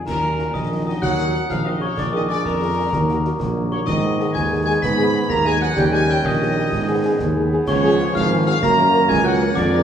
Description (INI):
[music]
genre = military-style march for wind band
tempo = 126 BPM (dotted quarters)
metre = 6/8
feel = straight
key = Eb minor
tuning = A4 = 440 Hz
[part]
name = glockenspiel with soft plastic mallets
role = second line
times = 0.0-9.8 s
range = Bb5 to Cb7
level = -26 LUFS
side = left 4 dB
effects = none
[part]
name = mellow euphonium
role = second line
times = 0.0-9.8 s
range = Bb2 to Cb4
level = -25 LUFS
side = right 3 dB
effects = none
[part]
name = warm woodwind section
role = second line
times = 0.0-9.8 s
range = Bb4 to Cb6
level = -28 LUFS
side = right 2 dB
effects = none
[part]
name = mellow trumpet section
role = melody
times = 0.1-9.8 s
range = Bb4 to Cb6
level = -24 LUFS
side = left 1 dB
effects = none
[part]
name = clear trombone section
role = sustained chords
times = 0.1-9.8 s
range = F3 to Eb4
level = -29 LUFS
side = right 2 dB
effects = none
[part]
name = mellow tuba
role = bass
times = 0.1-9.8 s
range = Ab1 to Ab2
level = -22 LUFS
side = right 1 dB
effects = none
[part]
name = concert snare drum, clash cymbals and concert bass drum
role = drums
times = 0.1-9.7 s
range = none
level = -28 LUFS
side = left 1 dB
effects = none
[part]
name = warm French horn section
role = accompaniment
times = 0.2-9.8 s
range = Bb3 to Bb4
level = -26 LUFS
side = left 1 dB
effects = none
[sound]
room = wet large studio reverb, RT60 1.4 s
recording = heard from further back in the room, small room ambience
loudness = -16 LUFS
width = side -8 dB against mid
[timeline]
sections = 0.1-9.8 A section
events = none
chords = 0.1 Ebm; 2.0 Bb7; 2.9 Ebm; 3.9 Abm; 5.8 Eb7; 6.7 Abm; 7.7 Db7; 8.6 Gb